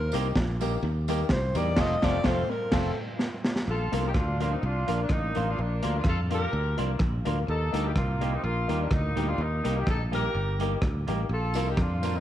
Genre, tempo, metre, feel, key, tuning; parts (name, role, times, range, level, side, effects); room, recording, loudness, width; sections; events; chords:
ska; 126 BPM; 4/4; swing 54% on 8ths; Bb major; A4 = 440 Hz
breathy alto saxophone; melody; 0.0-3.0 s; A4 to Eb5; -31 LUFS; equal
fingered electric bass; bass; 0.0-12.2 s; F1 to F2; -29 LUFS; equal
semi-hollow electric guitar; accompaniment; 0.1-12.2 s; F3 to G4; -35 LUFS; right 9 dB; spring reverb
warm upright piano; stabs; 0.1-12.2 s; A3 to Bb4; -34 LUFS; left 9 dB
crunchy breakbeat drum kit; drums; 0.1-12.1 s; crash cymbal, hi-hat, kick drum, rim click, snare drum; -29 LUFS; equal; tape echo
tambourine; percussion; 0.1-1.7, 11.5-12.1 s; -47 LUFS; right 10 dB
mellow horn section; melody; 3.7-12.2 s; Bb3 to Bb4; -32 LUFS; equal
light reverb, small room ambience; 1960s-style stereo with parts hard left and right; -25 LUFS; side -12 dB against mid
0.0-3.7 A section; 3.7-12.2 B section
alto saxophone solo 0.0-3.7; band accent 1.8-3.7; drum fill 3.2-3.7
0.0 Eb; 1.8 F; 3.7 Bb; 7.5 Eb; 11.3 Bb